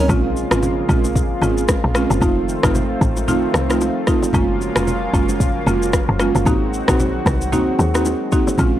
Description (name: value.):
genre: afrobeats.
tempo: 113 BPM.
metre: 4/4.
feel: swing 58% on 16ths.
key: Bb minor.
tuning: A4 = 443 Hz.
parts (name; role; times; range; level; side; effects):
buzzing marimba with medium hard mallets; accompaniment; 0.0-8.8 s; Ab3 to Gb4; -20 LUFS; right 2 dB; none.
lush unison pad; sustained chords; 0.0-8.8 s; Db3 to Gb4; -24 LUFS; left 1 dB; chorus.
woody log drum bass; bass; 0.1-8.8 s; F1 to Eb2; -21 LUFS; equal; none.
afro-pop drum kit; drums; 0.1-8.7 s; kick drum, rim click, shaker; -20 LUFS; equal; none.
congas and bongos; percussion; 0.1-8.7 s; none; -26 LUFS; left 1 dB; none.
room: digital ambience.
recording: dry, gritty hardware recording.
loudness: -15 LUFS.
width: side -12 dB against mid.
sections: 0.1-8.8 A section.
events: none.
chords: 0.1 Bbm7; 2.2 F7; 4.3 Gbmaj7; 6.5 Ab7.